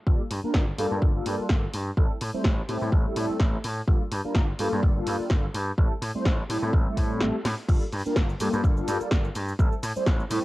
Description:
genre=filtered disco house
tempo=126 BPM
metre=4/4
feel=swing 54% on 16ths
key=G dorian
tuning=A4 = 440 Hz
part: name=mellow synth brass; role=accompaniment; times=0.1-10.4 s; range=G3 to C5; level=-29 LUFS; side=equal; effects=chorus, phaser, cassette tape, sidechain pumping, low-pass filter
part: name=gritty slap bass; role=bass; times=0.1-10.4 s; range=G1 to A2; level=-30 LUFS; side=equal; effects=overdrive, sidechain pumping, low-pass filter
part: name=electronic kick drum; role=drums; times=0.1-10.2 s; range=none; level=-23 LUFS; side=equal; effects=cassette tape
part: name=punchy analog drum machine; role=drums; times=0.3-10.4 s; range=crash cymbal, hi-hat, shaker, snare drum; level=-31 LUFS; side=equal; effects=overdrive, cassette tape
room=light reverb, digital ambience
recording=home recording on cassette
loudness=-23 LUFS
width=side -18 dB against mid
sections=0.0-10.4 A section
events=filter sweep 0.0-10.4; break 7.2-7.7; drum fill 7.5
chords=0.1 Gm9; 2.0 Am7; 3.9 Gm9; 5.8 Am7; 7.7 Gm9; 9.6 Am7

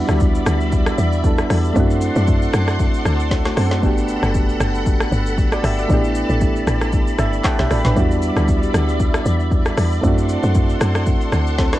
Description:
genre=amapiano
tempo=116 BPM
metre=4/4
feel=swing 55% on 16ths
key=E minor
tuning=A4 = 443 Hz
part: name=soft electric-piano-like synth keys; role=accompaniment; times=0.0-11.8 s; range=G3 to B5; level=-21 LUFS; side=right 2 dB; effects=chorus
part: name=soft string machine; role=sustained chords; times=0.0-11.8 s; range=G3 to C6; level=-26 LUFS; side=equal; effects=ensemble chorus
part: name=woody log drum bass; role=bass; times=0.0-11.8 s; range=F#1 to F#2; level=-19 LUFS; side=equal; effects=none
part: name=afro-pop drum kit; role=drums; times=0.1-11.8 s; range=handclaps, hi-hat, kick drum, rim click, shaker, snare drum, toms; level=-19 LUFS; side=equal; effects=vintage 12-bit sampler grit
room=digital ambience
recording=worn, warbling old tape, cassette tape, warbly pitch drift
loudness=-15 LUFS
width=side -15 dB against mid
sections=0.0-11.8 A section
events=synth keys fill 6.9-8.0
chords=0.0 Em7; 1.8 D7/F#; 3.8 Gmaj9; 5.9 A9sus4; 8.0 Em7; 10.0 D7/F#

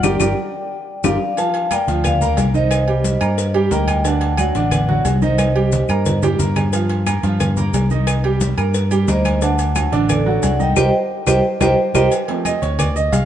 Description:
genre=latin, salsa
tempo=179 BPM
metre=4/4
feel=straight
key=G minor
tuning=A4 = 440 Hz
part: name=vibraphone with medium mallets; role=melody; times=0.0-6.2, 9.1-12.1 s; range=A4 to A5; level=-21 LUFS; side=equal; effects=none
part: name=clear baby grand piano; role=accompaniment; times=0.0-13.3 s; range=D3 to Bb5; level=-21 LUFS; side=right 4 dB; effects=none
part: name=fingered electric bass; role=bass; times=0.0-13.3 s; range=G1 to G2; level=-18 LUFS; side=equal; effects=none
part: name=bongos and cowbell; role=percussion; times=0.0-13.3 s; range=none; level=-29 LUFS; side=left 5 dB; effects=none
part: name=claves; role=percussion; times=0.0-13.0 s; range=none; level=-27 LUFS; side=left 7 dB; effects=none
part: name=congas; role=percussion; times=0.0-13.3 s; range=none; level=-24 LUFS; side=left 2 dB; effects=none
part: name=maracas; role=percussion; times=0.0-13.3 s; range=none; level=-30 LUFS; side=left 7 dB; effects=none
part: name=timbales and agogo bells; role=percussion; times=0.0-13.3 s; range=none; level=-27 LUFS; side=right 5 dB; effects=none
room=moderate plate reverb, RT60 2.7 s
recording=heard from further back in the room, nothing above 11.0 kHz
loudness=-15 LUFS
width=side -10 dB against mid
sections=0.0-1.4 A section; 1.4-12.1 B section; 12.1-13.3 C section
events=drum fill 0.0-1.4, 5.4-6.7; band accent 0.0-1.4, 10.8-12.1; grand piano solo 12.1-13.3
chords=0.0 Gm7; 1.4 Gm11; 2.7 Cm7; 4.0 D7; 5.4 Cm7; 6.7 Gm7; 8.1 Cm7; 9.4 D7; 10.8 Cm7; 12.1 Cm11

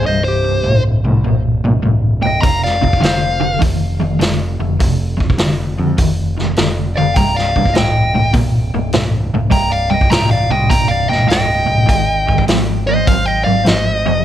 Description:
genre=blues rock power trio and southern rock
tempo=101 BPM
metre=4/4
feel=swing 68% on 8ths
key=C minor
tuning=A4 = 441 Hz
part: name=dark smooth lead guitar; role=melody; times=0.0-14.2 s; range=C5 to Bb5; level=-18 LUFS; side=left 1 dB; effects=overdrive
part: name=lightly driven lead guitar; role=second line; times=0.0-14.2 s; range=G4 to G5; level=-24 LUFS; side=right 3 dB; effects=none
part: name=overdriven semi-hollow guitar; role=riff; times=0.0-14.2 s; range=C2 to F#3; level=-17 LUFS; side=equal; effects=tremolo
part: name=growling picked electric bass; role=bass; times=0.0-14.2 s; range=C1 to F2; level=-19 LUFS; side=equal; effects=overdrive
part: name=vintage drum kit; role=drums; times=2.4-13.9 s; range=hi-hat, kick drum, snare drum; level=-17 LUFS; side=equal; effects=none
room=light reverb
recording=none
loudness=-12 LUFS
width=side -11 dB against mid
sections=0.0-14.2 A section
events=none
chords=0.0 C5; 2.4 F5; 7.2 Cm7; 11.9 Abmaj7

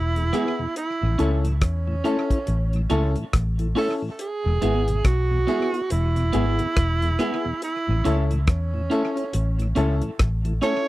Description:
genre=roots reggae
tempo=70 BPM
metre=4/4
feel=swing 60% on 16ths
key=A major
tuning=A4 = 440 Hz
part: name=breathy tenor saxophone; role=melody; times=0.0-10.9 s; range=C#4 to C#5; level=-27 LUFS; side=right 3 dB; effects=dub echo
part: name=vintage muted fingered electric bass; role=bass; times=0.0-10.6 s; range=E1 to E2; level=-22 LUFS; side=equal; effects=none
part: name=mellow tonewheel organ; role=accompaniment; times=0.2-10.7 s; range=E2 to E4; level=-29 LUFS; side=left 1 dB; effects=slow rotary speaker
part: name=warm upright piano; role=stabs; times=0.2-10.9 s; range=B3 to A4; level=-27 LUFS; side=left 4 dB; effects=none
part: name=cloth-damped thuddy drum kit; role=drums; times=0.2-10.9 s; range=hi-hat, kick drum, rim click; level=-24 LUFS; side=equal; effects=none
part: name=electric guitar at the edge of break-up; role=accompaniment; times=0.3-10.8 s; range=B3 to A4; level=-30 LUFS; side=right 4 dB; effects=dub echo
room=little or no reverb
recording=dry, close 1970s-style studio recording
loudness=-20 LUFS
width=side -17 dB against mid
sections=0.0-10.9 A section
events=none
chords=0.0 E; 0.8 A; 4.2 E; 7.6 A

